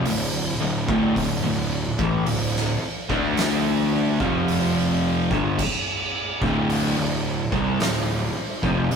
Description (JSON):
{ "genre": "stoner and doom metal", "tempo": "54 BPM", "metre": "4/4", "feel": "straight", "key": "D minor", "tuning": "A4 = 440 Hz", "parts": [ { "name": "crunchy overdriven guitar", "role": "riff", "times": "0.0-9.0 s", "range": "D2 to D4", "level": "-26 LUFS", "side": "left 2 dB", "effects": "none" }, { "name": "thick fuzz guitar", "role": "riff", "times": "0.0-9.0 s", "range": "D2 to D4", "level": "-28 LUFS", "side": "left 5 dB", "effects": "distortion" }, { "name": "thick fuzz guitar", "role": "riff", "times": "0.0-9.0 s", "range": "D2 to D4", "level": "-28 LUFS", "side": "right 7 dB", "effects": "distortion" }, { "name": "fuzz picked electric bass", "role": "bass", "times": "0.0-9.0 s", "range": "D1 to D2", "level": "-27 LUFS", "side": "equal", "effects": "overdrive" }, { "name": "oversized low-tuned drum kit", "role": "drums", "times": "0.1-9.0 s", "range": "crash cymbal, hi-hat, kick drum, snare drum", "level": "-26 LUFS", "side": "right 1 dB", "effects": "none" } ], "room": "moderate stone room reverb, RT60 1.0 s", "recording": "rough rehearsal-room recording, warm saturation", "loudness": "-20 LUFS", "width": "side -6 dB against mid", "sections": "0.0-9.0 A section", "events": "none", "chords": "0.0 D5; 4.2 F5; 5.3 Dm", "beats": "0.05 | 1.16 2.27 3.37 4.48 | 5.59 6.70 7.80 8.91" }